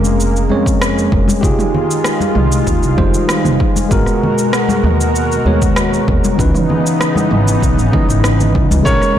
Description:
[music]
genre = sunset chillout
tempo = 97 BPM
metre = 4/4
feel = straight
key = unclear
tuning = A4 = 440 Hz
[part]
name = tine electric piano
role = accompaniment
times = 0.0-9.2 s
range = Fb3 to Eb5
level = -18 LUFS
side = equal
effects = auto-pan, ping-pong delay
[part]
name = lush unison pad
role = sustained chords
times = 0.0-9.2 s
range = Cb3 to Bb4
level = -18 LUFS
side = equal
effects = chorus
[part]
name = upright bass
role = bass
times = 0.0-9.0 s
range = F1 to F2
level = -16 LUFS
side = equal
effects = transformer saturation
[part]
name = deep house drum kit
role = drums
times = 0.0-9.1 s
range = rim click, shaker, toms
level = -21 LUFS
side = right 1 dB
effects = overdrive, small room ambience
[part]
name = congas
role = percussion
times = 0.5-9.2 s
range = none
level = -22 LUFS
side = left 3 dB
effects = none
[part]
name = electronic kick drum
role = drums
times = 0.7-9.0 s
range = none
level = -16 LUFS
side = equal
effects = overdrive, small room ambience
[part]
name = bright baby grand piano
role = melody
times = 8.8-9.2 s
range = Db5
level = -14 LUFS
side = right 1 dB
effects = none
[sound]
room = moderate plate reverb, RT60 2.2 s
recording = blown-out, overdriven recording, overdrive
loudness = -11 LUFS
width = side -10 dB against mid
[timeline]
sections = 0.0-9.2 A section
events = none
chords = 0.0 Bbm9; 1.4 Fm9; 3.9 Abm9; 6.4 Dbm9

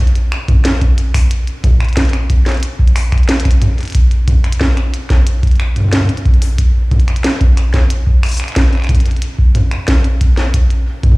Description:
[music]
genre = IDM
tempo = 91 BPM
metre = 4/4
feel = straight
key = none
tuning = none
[part]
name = glitchy drum kit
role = drums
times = 0.1-11.2 s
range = finger snaps, hi-hat, snare drum, toms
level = -18 LUFS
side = equal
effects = none
[part]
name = electronic kick drum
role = drums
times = 0.5-11.2 s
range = none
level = -11 LUFS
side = equal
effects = none
[sound]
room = little or no reverb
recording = played on a big sound system in a bare room, large studio reverb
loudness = -11 LUFS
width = side -23 dB against mid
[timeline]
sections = 0.0-11.2 A section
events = none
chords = none

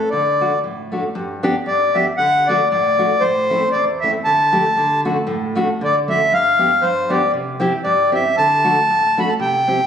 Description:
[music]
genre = alpine folk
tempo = 116 BPM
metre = 2/4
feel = swing 55% on 8ths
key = unclear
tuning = A4 = 438 Hz
[part]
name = accordion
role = melody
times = 0.0-9.9 s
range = C5 to B5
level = -15 LUFS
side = left 1 dB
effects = none
[part]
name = fingerpicked steel-string acoustic guitar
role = accompaniment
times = 0.1-9.8 s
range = E2 to G4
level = -21 LUFS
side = equal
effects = none
[sound]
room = moderate scoring stage reverb, RT60 1.7 s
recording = recorded on a phone in the room, club reverb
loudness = -15 LUFS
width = side -8 dB against mid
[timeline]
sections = 0.0-1.2 A section; 1.2-9.9 B section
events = none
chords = 0.1 D; 1.2 G; 2.2 D; 3.2 Am; 4.3 Dsus4; 4.8 D; 6.3 G7; 7.3 C; 8.4 D

